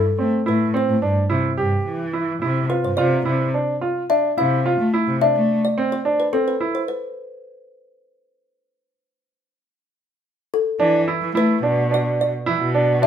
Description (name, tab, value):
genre	contemporary instrumental, chamber music in an uneven meter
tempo	108 BPM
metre	7/4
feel	straight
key	unclear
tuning	A4 = 443 Hz
part	kalimba	melody	0.0-13.1 s	A4 to F5	-23 LUFS	left 4 dB	none
part	clear baby grand piano	arpeggios	0.0-13.1 s	C4 to G4	-21 LUFS	right 3 dB	none
part	dark cello	bass	0.0-13.1 s	G2 to A3	-21 LUFS	left 1 dB	none
room	moderate studio reverb, RT60 0.7 s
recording	minimal, uncompressed stereo recording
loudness	-18 LUFS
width	side -8 dB against mid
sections	0.0-10.8 A section; 10.8-13.1 B section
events	stop 6.9-10.8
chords	0.0 C6; 3.0 F5/C; 6.9 N.C.; 10.8 E7sus4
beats	0.19 0.75 1.31 1.87 2.43 | 2.98 3.54 4.10 4.66 5.22 5.78 6.33 | 6.89 7.45 8.01 8.56 9.12 9.68 10.24 | 10.80 11.35 11.91 12.47 13.03